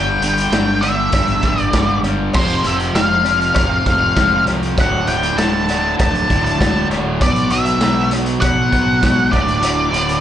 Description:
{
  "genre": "classic rock",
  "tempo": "99 BPM",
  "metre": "4/4",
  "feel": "straight",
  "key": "unclear",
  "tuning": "A4 = 441 Hz",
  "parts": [
    { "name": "octave-fuzz lead guitar", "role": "melody", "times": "0.0-10.2 s", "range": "C5 to A5", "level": "-18 LUFS", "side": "equal", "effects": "distortion, slapback echo" },
    { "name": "distorted electric guitar", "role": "riff", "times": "0.0-10.2 s", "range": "D2 to B3", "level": "-19 LUFS", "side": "equal", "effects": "distortion, slapback echo" },
    { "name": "fuzz fingered electric bass", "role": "bass", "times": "0.0-10.2 s", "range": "D1 to C2", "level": "-23 LUFS", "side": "equal", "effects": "overdrive" },
    { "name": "raw garage drum kit", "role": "drums", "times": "0.2-10.2 s", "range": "crash cymbal, hi-hat, kick drum, snare drum", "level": "-19 LUFS", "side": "equal", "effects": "none" },
    { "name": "cowbell", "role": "percussion", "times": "0.5-9.8 s", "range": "none", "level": "-29 LUFS", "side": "left 2 dB", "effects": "none" }
  ],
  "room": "small room ambience",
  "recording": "live gig heard through the venue's PA, club reverb, nothing above 10.4 kHz",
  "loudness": "-13 LUFS",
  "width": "side -10 dB against mid",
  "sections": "0.0-10.2 A section",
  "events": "none",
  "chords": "0.0 G5; 2.3 F5; 4.8 D5; 7.2 B5; 9.3 D5"
}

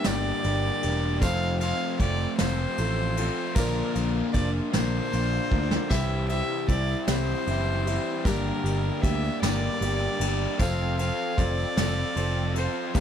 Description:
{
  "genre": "folk rock and heartland rock",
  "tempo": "51 BPM (dotted quarters)",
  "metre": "6/8",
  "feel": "straight",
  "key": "unclear",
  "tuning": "A4 = 441 Hz",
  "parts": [
    { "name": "rich fiddle", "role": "melody", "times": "0.0-13.0 s", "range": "Bb4 to F5", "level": "-31 LUFS", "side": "equal", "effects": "none" },
    { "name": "clear grand piano", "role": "accompaniment", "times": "0.0-13.0 s", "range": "F4 to E5", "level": "-38 LUFS", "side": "right 6 dB", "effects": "none" },
    { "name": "picked steel-string acoustic guitar", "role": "accompaniment", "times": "0.0-13.0 s", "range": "G2 to Bb4", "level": "-33 LUFS", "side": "left 8 dB", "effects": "none" },
    { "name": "raw garage guitar", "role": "riff", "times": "0.0-13.0 s", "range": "F2 to A4", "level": "-31 LUFS", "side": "right 1 dB", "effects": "overdrive" },
    { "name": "soft brush drum kit", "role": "drums", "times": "0.0-13.0 s", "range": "crash cymbal, kick drum, ride cymbal, snare drum", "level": "-30 LUFS", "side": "equal", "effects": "none" },
    { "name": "picked electric bass", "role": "bass", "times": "0.1-13.0 s", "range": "E1 to D2", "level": "-28 LUFS", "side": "equal", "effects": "none" },
    { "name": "tambourine", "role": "percussion", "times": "0.1-13.0 s", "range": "none", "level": "-44 LUFS", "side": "right 5 dB", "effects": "none" }
  ],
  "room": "little or no reverb",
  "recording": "none",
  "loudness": "-24 LUFS",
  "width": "side -9 dB against mid",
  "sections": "0.0-13.0 A section",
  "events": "drum fill 5.5-5.9",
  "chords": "0.0 Gm; 1.2 F; 3.6 Bb; 5.9 C; 8.3 Gm; 10.6 F"
}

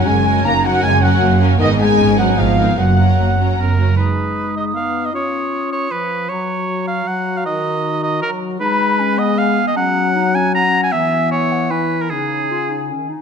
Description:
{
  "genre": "cinematic, heroic adventure film score",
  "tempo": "155 BPM",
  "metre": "3/4",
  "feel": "straight",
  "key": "F# major",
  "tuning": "A4 = 439 Hz",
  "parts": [
    { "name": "dark symphonic violin section", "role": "melody", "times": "0.0-3.6 s", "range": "D#5 to A#5", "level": "-26 LUFS", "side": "left 3 dB", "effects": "none" },
    { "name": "mellow baroque flute", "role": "second line", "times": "0.0-13.1 s", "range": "D#5 to D#6", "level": "-24 LUFS", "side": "left 2 dB", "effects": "none" },
    { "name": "mellow clarinet", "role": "second line", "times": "0.0-13.2 s", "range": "A#3 to F#4", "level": "-25 LUFS", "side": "left 1 dB", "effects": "none" },
    { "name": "warm symphonic violin section", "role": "second line", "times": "0.0-4.0 s", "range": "A#4 to A#5", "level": "-27 LUFS", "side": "left 2 dB", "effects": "none" },
    { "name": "warm symphonic viola section", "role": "accompaniment", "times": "0.0-4.0 s", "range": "B3 to F#4", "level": "-25 LUFS", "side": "equal", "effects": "none" },
    { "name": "dark French horn section", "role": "sustained chords", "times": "0.0-13.1 s", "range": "C#3 to C#4", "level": "-20 LUFS", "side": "left 5 dB", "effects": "none" },
    { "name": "warm trumpet section", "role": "stabs", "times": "0.0-3.6 s", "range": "D#5 to A#5", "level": "-21 LUFS", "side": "right 3 dB", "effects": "none" },
    { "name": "rich symphonic cello section", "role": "bass", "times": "0.1-3.9 s", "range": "F#2 to G#2", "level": "-19 LUFS", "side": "right 4 dB", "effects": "none" },
    { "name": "rich symphonic double bass section", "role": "bass", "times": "0.1-3.9 s", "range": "F#1 to G#1", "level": "-18 LUFS", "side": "right 4 dB", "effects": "none" },
    { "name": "clear oboe", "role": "second line", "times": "3.6-12.9 s", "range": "G#4 to A#5", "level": "-19 LUFS", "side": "right 2 dB", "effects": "none" }
  ],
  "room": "moderate scoring stage reverb, RT60 1.8 s",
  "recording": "none",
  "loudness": "-14 LUFS",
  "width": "side -6 dB against mid",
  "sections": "0.0-4.0 A section; 4.0-13.2 B section",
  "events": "none",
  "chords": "0.0 F#add9; 1.6 G#madd9; 2.8 F#; 4.0 G#m; 5.1 C#add9; 6.3 F#; 7.5 D#m; 8.6 G#m; 9.8 F#; 10.9 E; 12.1 C#sus2"
}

